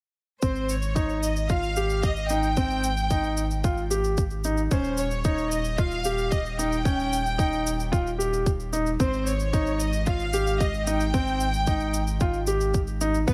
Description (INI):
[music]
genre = piano and strings electronica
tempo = 112 BPM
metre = 4/4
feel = straight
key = Ab major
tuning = A4 = 440 Hz
[part]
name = warm studio violin section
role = melody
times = 0.4-13.3 s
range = B4 to G5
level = -33 LUFS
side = equal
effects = none
[part]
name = warm string quartet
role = sustained chords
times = 0.4-13.3 s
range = Eb3 to Eb5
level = -46 LUFS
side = equal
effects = none
[part]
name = clear upright piano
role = riff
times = 0.4-13.3 s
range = B3 to G4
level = -30 LUFS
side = equal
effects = low-pass filter, delay
[part]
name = warm sub bass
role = bass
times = 0.4-13.3 s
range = Eb1 to B1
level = -31 LUFS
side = equal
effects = sidechain pumping
[part]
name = electronic kick drum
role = drums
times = 0.4-13.3 s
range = none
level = -27 LUFS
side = equal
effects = none
[part]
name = shaker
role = drums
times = 0.4-13.3 s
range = none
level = -39 LUFS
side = equal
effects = none
[sound]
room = light reverb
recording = none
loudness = -25 LUFS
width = mono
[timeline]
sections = 0.4-13.3 A section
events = none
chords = 0.4 Abmaj7; 4.7 Eb7; 9.0 Abmaj7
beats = | 0.43 0.96 1.50 2.03 | 2.57 3.10 3.64 4.18 | 4.71 5.25 5.78 6.32 | 6.86 7.39 7.93 8.46 | 9.00 9.53 10.07 10.61 | 11.14 11.68 12.21 12.75 | 13.28